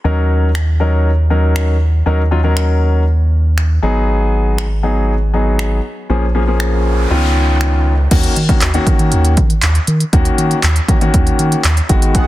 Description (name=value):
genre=dance-pop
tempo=119 BPM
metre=4/4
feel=straight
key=Eb minor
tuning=A4 = 442 Hz
part: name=warm concert grand piano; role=accompaniment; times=0.0-12.3 s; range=Eb3 to Bb4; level=-18 LUFS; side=left 2 dB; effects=sidechain pumping
part: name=round analog bass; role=bass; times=0.0-12.2 s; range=Ab1 to Eb3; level=-14 LUFS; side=equal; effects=sidechain pumping
part: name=deep house drum kit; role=drums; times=0.6-12.3 s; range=crash cymbal, finger snaps, handclaps, hi-hat, kick drum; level=-15 LUFS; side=equal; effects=soft clipping on snare
part: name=noise sweep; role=sound effects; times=6.4-8.1 s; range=none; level=-24 LUFS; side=right 2 dB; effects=none
part: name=soft supersaw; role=sustained chords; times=12.1-12.3 s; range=Cb4 to Gb5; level=-19 LUFS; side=right 2 dB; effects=phaser, sidechain pumping
room=digital ambience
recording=dense, heavily limited modern master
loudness=-12 LUFS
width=side -16 dB against mid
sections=0.0-8.1 A section; 8.1-12.3 B section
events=noise sweep 6.4-8.1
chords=0.0 Ebm7; 3.8 Abm7; 6.1 Bbm7; 7.1 Db9; 8.1 Ebm7